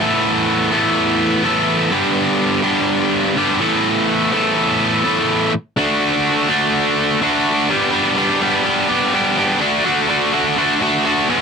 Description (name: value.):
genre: rock.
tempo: 125 BPM.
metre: 4/4.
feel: straight.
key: unclear.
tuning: A4 = 440 Hz.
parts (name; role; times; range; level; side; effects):
distorted electric guitar; solo; 0.0-11.4 s; E2 to A4; -14 LUFS; equal; overdrive.
room: light reverb.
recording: dry, close 1970s-style studio recording.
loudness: -14 LUFS.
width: side -6 dB against mid.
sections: 0.0-7.7 A section; 7.7-11.4 B section.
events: none.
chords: 0.0 Asus2; 1.9 G; 3.6 Asus2; 5.8 D; 7.7 G; 9.6 D.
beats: | 0.00 0.48 0.96 1.44 | 1.92 2.40 2.88 3.37 | 3.85 4.33 4.81 5.29 | 5.77 6.25 6.74 7.22 | 7.70 8.18 8.66 9.14 | 9.62 10.10 10.58 11.06.